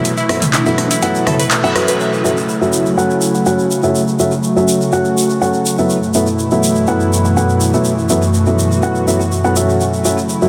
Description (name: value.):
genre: progressive house.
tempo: 123 BPM.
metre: 4/4.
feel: straight.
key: F# minor.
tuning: A4 = 438 Hz.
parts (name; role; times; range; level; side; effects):
airy breathy pad; sustained chords; 0.0-10.5 s; F#2 to F#4; -19 LUFS; equal; chorus, vintage 12-bit sampler grit.
glassy wavetable pluck; arpeggios; 0.0-1.9 s; E4 to E5; -24 LUFS; equal; chorus, delay.
felt-muted upright piano; stabs; 0.0-10.5 s; F#3 to F#5; -18 LUFS; equal; low-pass filter, delay.
egg shaker; percussion; 0.0-10.5 s; none; -26 LUFS; equal; none.
deep house drum kit; drums; 0.1-10.4 s; handclaps, hi-hat; -23 LUFS; equal; overdrive, low-pass filter on hats, low-pass filter on snare.
punchy analog drum machine; percussion; 0.3-1.9 s; congas, rim click, toms; -24 LUFS; equal; soft clipping on snare.
room: moderate huge ambient reverb, RT60 4.0 s.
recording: dense, heavily limited modern master.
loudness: -14 LUFS.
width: mono.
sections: 0.0-2.0 A section; 2.0-10.5 B section.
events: band accent 1.5.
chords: 0.0 F#m7; 5.9 Esus4/F#; 9.8 F#m7.